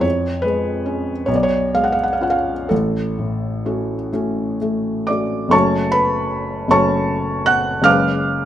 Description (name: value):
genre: classical, romantic nocturne for solo piano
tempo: 41-54 BPM (dotted quarters)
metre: 12/8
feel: rubato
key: F# minor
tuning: A4 = 441 Hz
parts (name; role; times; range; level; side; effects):
- felt-muted upright piano; solo; 0.0-8.5 s; F#1 to F#6; -16 LUFS; equal; none
room: light reverb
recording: close, detailed microphones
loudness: -16 LUFS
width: side -11 dB against mid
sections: 0.0-5.5 A section; 5.5-8.5 A section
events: none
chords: 0.0 C#7/E#; 1.3 C#7/B; 2.7 F#m/A; 5.5 F#m; 7.9 C#7b9/F#